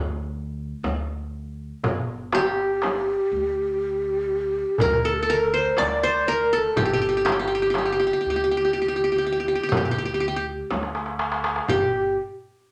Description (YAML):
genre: Arabic maqam ensemble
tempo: 122 BPM (eighths)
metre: 10/8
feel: straight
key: G minor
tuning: A4 = 440 Hz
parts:
  - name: qanun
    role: melody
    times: 0.0-12.2 s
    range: G4 to D5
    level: -26 LUFS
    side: equal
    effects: none
  - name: upright bass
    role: bass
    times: 0.0-12.2 s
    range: G1 to D2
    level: -36 LUFS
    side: equal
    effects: none
  - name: frame drum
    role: percussion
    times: 0.8-12.1 s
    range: none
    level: -32 LUFS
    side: equal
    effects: none
  - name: darbuka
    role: percussion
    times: 1.8-12.1 s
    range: none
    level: -30 LUFS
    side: equal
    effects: none
  - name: breathy hollow low ney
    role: second line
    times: 2.3-12.1 s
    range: G4 to D5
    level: -26 LUFS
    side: equal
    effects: none
room: wet large studio reverb, RT60 0.8 s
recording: none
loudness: -24 LUFS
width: mono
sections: 0.0-11.7 A section; 11.7-12.7 B section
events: drum fill 10.7-11.7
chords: none